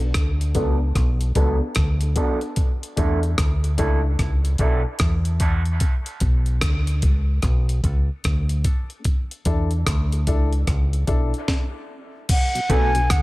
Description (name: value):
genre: dub reggae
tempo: 74 BPM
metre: 4/4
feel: swing 63% on 16ths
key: B dorian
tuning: A4 = 439 Hz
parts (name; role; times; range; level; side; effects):
- deep dub fingered electric bass; bass; 0.0-13.2 s; B1 to E2; -20 LUFS; equal; none
- breakbeat sampler-style drum kit; drums; 0.0-13.2 s; crash cymbal, hi-hat, kick drum, rim click, snare drum; -22 LUFS; equal; none
- dark upright piano; stabs; 0.5-12.9 s; B3 to A4; -30 LUFS; left 4 dB; high-pass filter, low-pass filter, dub echo
- electric guitar through a small old amp; accompaniment; 0.6-5.6, 12.7-12.9 s; F#3 to A4; -30 LUFS; right 5 dB; high-pass filter, low-pass filter, dub echo
- concert flute; melody; 12.3-13.2 s; F#5 to G#5; -22 LUFS; equal; none
- mellow tonewheel organ; accompaniment; 12.5-13.0 s; B2 to D4; -33 LUFS; left 1 dB; none
room: digital ambience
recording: none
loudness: -19 LUFS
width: side -19 dB against mid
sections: 0.0-12.3 A section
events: filter sweep 0.0-12.3; stop 11.5-12.3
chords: 0.0 Bm7; 2.6 E7sus4; 5.8 Bm7; 9.1 E7sus4; 12.3 Bm7